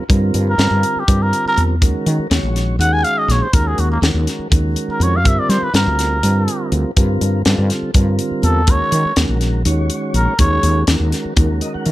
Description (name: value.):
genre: electric jazz fusion.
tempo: 245 BPM (eighths).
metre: 7/8.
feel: straight.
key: unclear.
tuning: A4 = 441 Hz.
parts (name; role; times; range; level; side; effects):
mellow tonewheel organ; accompaniment; 0.0-11.9 s; D3 to Gb5; -22 LUFS; right 1 dB; slow rotary speaker.
woody fretless electric bass; bass; 0.1-11.9 s; Bb1 to G3; -16 LUFS; equal; none.
tight funk drum kit; drums; 0.1-11.9 s; hi-hat, kick drum, snare drum; -17 LUFS; equal; none.
trumpet with cup mute; melody; 0.5-10.8 s; Bb3 to Ab5; -18 LUFS; equal; slapback echo.
room: little or no reverb.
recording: none.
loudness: -14 LUFS.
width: side -16 dB against mid.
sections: 0.0-11.9 A section.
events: muted trumpet solo 0.0-11.9; tonewheel organ fill 11.4-11.9.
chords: 0.0 Gm7; 1.8 Ebm7; 5.3 Gm9; 8.7 Ebm7.